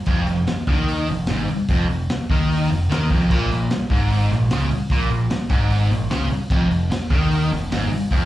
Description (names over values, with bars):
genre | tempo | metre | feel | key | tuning
garage rock duo or trio | 149 BPM | 4/4 | straight | unclear | A4 = 437 Hz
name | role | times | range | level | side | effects
fuzz guitar | riff | 0.1-8.3 s | F2 to Eb3 | -21 LUFS | equal | distortion, slapback echo
growling picked electric bass | bass | 0.1-8.3 s | F1 to Eb2 | -22 LUFS | equal | overdrive
crunchy breakbeat drum kit | drums | 0.1-8.2 s | crash cymbal, hi-hat, kick drum, snare drum | -23 LUFS | equal | none
room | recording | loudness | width
little or no reverb | live gig heard through the venue's PA, club reverb | -18 LUFS | side -14 dB against mid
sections
0.0-8.3 A section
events
none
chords
0.0 N.C.; 3.3 Absus24; 6.5 Fm